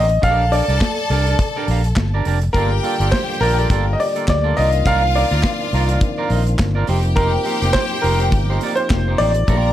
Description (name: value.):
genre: disco.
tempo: 104 BPM.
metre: 4/4.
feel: swing 56% on 16ths.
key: unclear.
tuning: A4 = 440 Hz.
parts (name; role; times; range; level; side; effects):
bright baby grand piano; melody; 0.0-9.7 s; Bb4 to F5; -20 LUFS; equal; slapback echo.
clean electric guitar; accompaniment; 0.0-9.7 s; Bb3 to F5; -25 LUFS; right 7 dB; none.
fingered electric bass; bass; 0.0-9.7 s; F1 to D2; -18 LUFS; equal; none.
modern studio drum kit; drums; 0.1-9.6 s; handclaps, hi-hat, kick drum, snare drum; -22 LUFS; equal; none.
clear studio string section; second line; 0.2-9.7 s; F4 to Bb5; -25 LUFS; left 3 dB; none.
percussive tonewheel organ; sustained chords; 2.5-9.7 s; D3 to G4; -27 LUFS; left 1 dB; chorus vibrato, slow rotary speaker.
room: small room ambience.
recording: none.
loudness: -15 LUFS.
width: side -12 dB against mid.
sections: 0.0-9.7 A section.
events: none.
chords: 0.2 Bb6; 2.5 Gm9; 4.6 Cm11; 6.9 F9sus4.